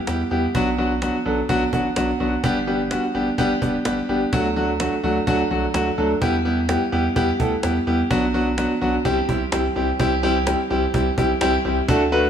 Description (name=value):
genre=synth-pop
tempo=127 BPM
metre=4/4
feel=straight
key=unclear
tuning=A4 = 439 Hz
part: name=clear grand piano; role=accompaniment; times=0.1-12.2 s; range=F#3 to B4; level=-19 LUFS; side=equal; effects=none
part: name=round analog bass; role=bass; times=0.1-12.3 s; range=F#1 to E2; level=-27 LUFS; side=right 1 dB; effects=none
part: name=cajon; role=drums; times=0.1-12.3 s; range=none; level=-28 LUFS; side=right 2 dB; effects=none
room=moderate lush hall reverb, RT60 1.9 s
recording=small room ambience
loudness=-18 LUFS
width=side -8 dB against mid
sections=0.0-10.0 A section; 10.0-11.9 B section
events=none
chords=0.0 Em; 0.5 Bm; 2.4 G; 4.3 D; 6.2 Em; 8.1 Bm; 9.1 C